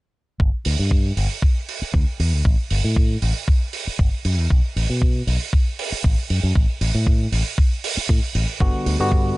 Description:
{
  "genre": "nu-disco, nu disco",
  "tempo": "117 BPM",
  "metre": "4/4",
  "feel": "straight",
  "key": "unclear",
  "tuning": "A4 = 440 Hz",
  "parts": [
    { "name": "fingered electric bass with an envelope filter", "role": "bass", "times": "0.4-9.3 s", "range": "G1 to B2", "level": "-20 LUFS", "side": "equal", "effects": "none" },
    { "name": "electronic kick drum", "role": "drums", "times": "0.4-9.2 s", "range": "none", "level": "-18 LUFS", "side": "equal", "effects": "none" },
    { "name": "hi-hat", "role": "drums", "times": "0.7-9.0 s", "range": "none", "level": "-28 LUFS", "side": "right 7 dB", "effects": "none" },
    { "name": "barky tine electric piano", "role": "accompaniment", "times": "8.6-9.3 s", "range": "D3 to F#4", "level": "-22 LUFS", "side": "left 1 dB", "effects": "sidechain pumping" }
  ],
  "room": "studio reverb",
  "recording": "nothing above 10.6 kHz",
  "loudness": "-18 LUFS",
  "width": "side -20 dB against mid",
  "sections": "0.4-9.4 A section",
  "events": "none",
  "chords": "0.4 G5; 2.5 A5; 4.5 B5; 6.6 N.C.; 8.6 Gmaj7",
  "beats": "| 0.40 0.92 1.43 1.94 | 2.45 2.97 3.48 3.99 | 4.50 5.02 5.53 6.04 | 6.56 7.07 7.58 8.10 | 8.61 9.12"
}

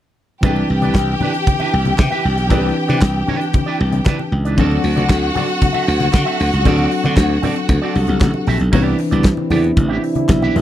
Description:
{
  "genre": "disco",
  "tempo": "116 BPM",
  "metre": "4/4",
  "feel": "straight",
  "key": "C lydian",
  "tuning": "A4 = 439 Hz",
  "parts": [
    { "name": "bright studio string section", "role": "second line", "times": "0.4-8.4 s", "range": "F#4 to G5", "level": "-21 LUFS", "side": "left 1 dB", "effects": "none" },
    { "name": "electric guitar with an envelope filter", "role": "accompaniment", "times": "0.4-10.6 s", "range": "B3 to E5", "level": "-25 LUFS", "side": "right 6 dB", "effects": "none" },
    { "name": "mellow tine electric piano", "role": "accompaniment", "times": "0.4-10.6 s", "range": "E3 to B4", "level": "-22 LUFS", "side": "left 2 dB", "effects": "medium stereo tremolo" },
    { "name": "glassy slap bass", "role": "bass", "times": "0.4-10.6 s", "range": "A1 to D3", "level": "-17 LUFS", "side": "equal", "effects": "none" },
    { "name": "modern studio drum kit", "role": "drums", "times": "0.4-10.6 s", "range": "crash cymbal, handclaps, hi-hat, kick drum, snare drum", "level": "-15 LUFS", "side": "equal", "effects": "none" },
    { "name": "congas", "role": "percussion", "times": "0.4-10.6 s", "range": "none", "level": "-22 LUFS", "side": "left 4 dB", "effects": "none" },
    { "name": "mellow French horn section", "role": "sustained chords", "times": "8.7-10.6 s", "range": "C3 to E4", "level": "-20 LUFS", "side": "right 3 dB", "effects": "stereo widening" }
  ],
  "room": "small room ambience",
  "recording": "dry, close 1970s-style studio recording",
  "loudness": "-14 LUFS",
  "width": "side -12 dB against mid",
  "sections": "0.4-8.7 A section; 8.7-10.6 B section",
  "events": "none",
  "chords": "0.4 Cmaj9; 4.6 D7; 8.7 Cmaj9",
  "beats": "| 0.43 0.94 1.46 1.98 | 2.50 3.02 3.54 4.06 | 4.58 5.10 5.62 6.13 | 6.65 7.17 7.69 8.21 | 8.73 9.25 9.77 10.29"
}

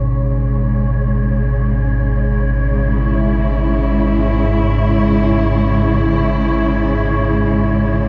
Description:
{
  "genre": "dark ambient drone",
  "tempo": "free time",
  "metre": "none",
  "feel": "none",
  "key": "unclear",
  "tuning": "A4 = 440 Hz",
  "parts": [
    { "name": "warm studio cello section", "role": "sustained chords", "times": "0.0-8.1 s", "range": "G#2 to E4", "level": "-18 LUFS", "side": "equal", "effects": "none" },
    { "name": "deep rumbling drone", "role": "drone", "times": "0.0-8.1 s", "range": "G#1 to B2", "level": "-20 LUFS", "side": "equal", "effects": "built-in reverb, subtle chorus" },
    { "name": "wind-like tuned noise texture", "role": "texture", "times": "0.0-8.1 s", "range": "C#5", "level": "-28 LUFS", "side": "equal", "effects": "built-in reverb" }
  ],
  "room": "wet echo chamber reverb, RT60 2.1 s",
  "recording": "nothing above 7.9 kHz",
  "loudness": "-16 LUFS",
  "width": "mono",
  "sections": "0.0-8.1 A section",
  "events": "none",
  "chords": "0.0 C#m/G#",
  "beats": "free time"
}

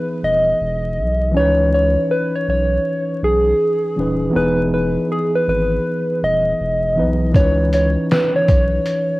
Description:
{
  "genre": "lo-fi hip hop",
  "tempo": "80 BPM",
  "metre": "4/4",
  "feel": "swing 63% on 16ths",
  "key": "C# minor",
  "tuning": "A4 = 444 Hz",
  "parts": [
    { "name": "soft struck synth lead", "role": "melody", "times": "0.0-9.2 s", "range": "G#4 to D#5", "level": "-18 LUFS", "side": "equal", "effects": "chorus, low-pass filter, cassette tape" },
    { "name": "tine electric piano", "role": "accompaniment", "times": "0.0-9.2 s", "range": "E3 to E5", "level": "-21 LUFS", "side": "equal", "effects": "overdrive, medium stereo tremolo, low-pass filter, cassette tape" },
    { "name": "saturated sub bass", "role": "bass", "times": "0.2-8.8 s", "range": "D#1 to C#2", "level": "-21 LUFS", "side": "equal", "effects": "tube saturation" },
    { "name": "lo-fi sampler-style drum kit", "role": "drums", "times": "7.3-9.1 s", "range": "hi-hat, kick drum, snare drum", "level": "-17 LUFS", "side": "equal", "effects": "vintage 12-bit sampler grit, cassette tape" }
  ],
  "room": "light reverb, digital ambience",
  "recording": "home recording on cassette, vinyl crackle",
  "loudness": "-15 LUFS",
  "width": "side -19 dB against mid",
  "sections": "0.0-9.2 A section",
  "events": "none",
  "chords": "0.0 Emaj7; 1.3 C#m9; 4.3 Emaj7; 7.3 C#m9",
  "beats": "0.60 | 1.35 2.10 2.85 3.60 | 4.35 5.10 5.85 6.60 | 7.35 8.10 8.85"
}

